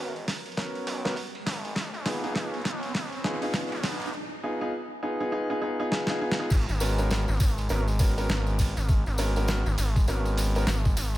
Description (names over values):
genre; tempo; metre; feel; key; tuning
glitch hop; 101 BPM; 4/4; swing 61% on 16ths; G# dorian; A4 = 440 Hz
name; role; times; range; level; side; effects
warm concert grand piano; stabs; 0.0-10.7 s; B3 to A#4; -31 LUFS; equal; sidechain pumping, dub echo
gritty driven synth bass; bass; 0.0-11.2 s; G#1 to C#2; -28 LUFS; equal; high-pass filter
riser; sound effects; 0.1-4.1 s; none; -39 LUFS; right 1 dB; none
boom bap sampler-style drum kit; drums; 0.2-11.2 s; crash cymbal, hi-hat, snare drum; -32 LUFS; equal; small room ambience
electronic kick drum; drums; 0.6-10.9 s; none; -24 LUFS; equal; high-pass filter on kick, small room ambience
tambourine; percussion; 6.5-11.2 s; none; -39 LUFS; left 2 dB; none
room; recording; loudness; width
little or no reverb; none; -25 LUFS; side -16 dB against mid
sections
0.0-6.5 A section; 6.5-11.2 B section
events
build-up 0.0-6.5; drum fill 0.0-4.1, 5.9-6.5; riser 0.1-4.1; drop 6.5-11.2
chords
0.0 G#m11; 1.8 C#7; 6.5 G#m11